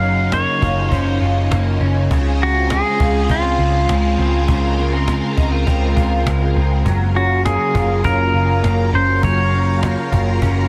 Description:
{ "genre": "dream pop", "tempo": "101 BPM", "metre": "4/4", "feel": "straight", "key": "Gb lydian", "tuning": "A4 = 440 Hz", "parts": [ { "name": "pedal steel guitar", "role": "melody", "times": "0.0-9.8 s", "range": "F4 to F5", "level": "-23 LUFS", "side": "equal", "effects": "tape echo" }, { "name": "string machine, violins", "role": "sustained chords", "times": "0.0-10.7 s", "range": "Db3 to Bb4", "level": "-25 LUFS", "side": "equal", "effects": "ensemble chorus" }, { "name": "electric guitar through a small old amp", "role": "arpeggios", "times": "0.0-10.7 s", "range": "Db3 to F4", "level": "-25 LUFS", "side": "equal", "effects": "analog chorus, tape echo" }, { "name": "vintage muted picked electric bass", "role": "bass", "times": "0.0-10.7 s", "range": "Gb1 to Db2", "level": "-20 LUFS", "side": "equal", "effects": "none" }, { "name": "cajon", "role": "drums", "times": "0.0-10.6 s", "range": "none", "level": "-24 LUFS", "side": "equal", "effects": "none" } ], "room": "light reverb", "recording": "dense, heavily limited modern master", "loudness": "-17 LUFS", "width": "mono", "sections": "0.0-6.9 A section; 6.9-10.7 B section", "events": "none", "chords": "0.0 Gbmaj7; 2.1 Dbmaj7; 6.9 Gbmaj7" }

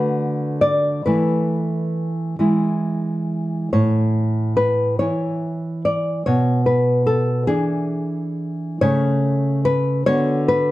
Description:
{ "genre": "romantic piece for solo classical guitar", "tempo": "46 BPM (dotted quarters)", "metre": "6/8", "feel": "uneven beats, rubato", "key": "A major", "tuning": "A4 = 441 Hz", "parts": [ { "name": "nylon-string guitar", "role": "solo", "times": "0.0-10.7 s", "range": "A2 to D5", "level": "-18 LUFS", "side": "equal", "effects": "none" } ], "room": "light reverb", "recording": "close, detailed microphones", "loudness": "-18 LUFS", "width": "side -16 dB against mid", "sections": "0.0-10.7 A section", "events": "none", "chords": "0.0 Bm7/D; 1.1 Esus4; 2.4 E; 3.7 A; 6.3 E7/B; 8.8 A/C#; 10.1 Bm/D" }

